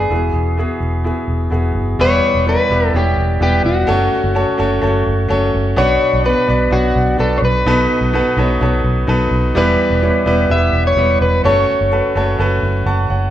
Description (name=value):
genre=piano-driven pop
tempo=127 BPM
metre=4/4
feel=straight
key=unclear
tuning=A4 = 445 Hz
part: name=electric guitar at the edge of break-up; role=melody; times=0.0-12.4 s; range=F#4 to E5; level=-18 LUFS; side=left 1 dB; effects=none
part: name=clear grand piano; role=accompaniment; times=0.0-13.3 s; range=G2 to C#6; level=-17 LUFS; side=equal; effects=none
part: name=vintage muted fingered electric bass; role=bass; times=0.0-13.3 s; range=E1 to B1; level=-17 LUFS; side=equal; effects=none
room=wet large studio reverb, RT60 1.4 s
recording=band playing live in one room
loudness=-13 LUFS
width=side -12 dB against mid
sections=0.0-2.0 A section; 2.0-13.3 B section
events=grand piano fill 12.6-13.3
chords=0.1 Eadd9; 2.0 Em; 3.9 F#m; 5.8 Bm; 7.7 B7; 9.6 Em; 11.4 F#m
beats=| 0.11 0.58 1.05 1.52 | 2.00 2.47 2.94 3.41 | 3.88 4.36 4.83 5.30 | 5.78 6.25 6.72 7.19 | 7.66 8.14 8.61 9.08 | 9.55 10.03 10.50 10.97 | 11.44 11.92 12.39 12.86